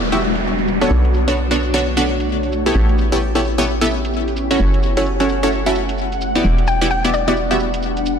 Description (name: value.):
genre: UK garage, two-step garage.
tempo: 130 BPM.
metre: 4/4.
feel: swing 62% on 16ths.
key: E dorian.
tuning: A4 = 440 Hz.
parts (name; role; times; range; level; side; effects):
ethereal airy pad; sustained chords; 0.2-8.2 s; G3 to F#5; -23 LUFS; equal; ensemble chorus, built-in reverb.
hollow knocking FM bass; bass; 0.0-8.2 s; E1 to B1; -20 LUFS; equal; tube saturation.
downlifter; sound effects; 0.0-2.8 s; none; -24 LUFS; left 2 dB; none.
punchy chord stab; stabs; 0.1-7.6 s; B3 to E5; -18 LUFS; equal; chorus, ping-pong delay.
electronic shaker and hi-hat; drums; 0.2-8.2 s; none; -35 LUFS; right 3 dB; low-pass filter on hats, studio reverb, low-pass filter on perc, low-pass filter on snare.
hollow square pluck; melody; 6.7-7.3 s; D5 to G5; -21 LUFS; left 4 dB; chorus, ping-pong delay.
room: moderate plate reverb, RT60 2.0 s, digital ambience.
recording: dense, heavily limited modern master.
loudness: -15 LUFS.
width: side -7 dB against mid.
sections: 0.0-8.2 A section.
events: none.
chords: 0.0 Em9; 0.9 Bm7; 2.8 A7; 4.6 F#m7; 6.4 Em9.